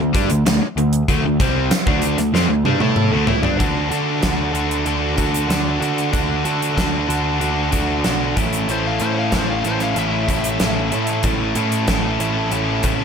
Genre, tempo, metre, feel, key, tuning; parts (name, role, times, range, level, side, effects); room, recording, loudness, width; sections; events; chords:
classic rock; 94 BPM; 4/4; straight; D major; A4 = 440 Hz
biting overdriven guitar; riff; 0.0-13.0 s; A2 to A4; -22 LUFS; right 11 dB
crunchy overdriven guitar; riff; 0.0-13.0 s; A2 to A4; -21 LUFS; left 11 dB
growling picked electric bass; bass; 0.0-13.0 s; A1 to D3; -24 LUFS; equal; overdrive
gated 80s drum kit; drums; 0.1-13.0 s; hi-hat, kick drum, snare drum, toms; -21 LUFS; equal
smooth overdriven lead guitar; second line; 8.7-11.2 s; C5 to F5; -26 LUFS; left 5 dB
light reverb, small room ambience; -16 LUFS; side -6 dB against mid
0.0-3.6 A section; 3.6-13.0 B section
drum fill 2.3-3.6
0.0 D5; 3.6 D; 8.4 A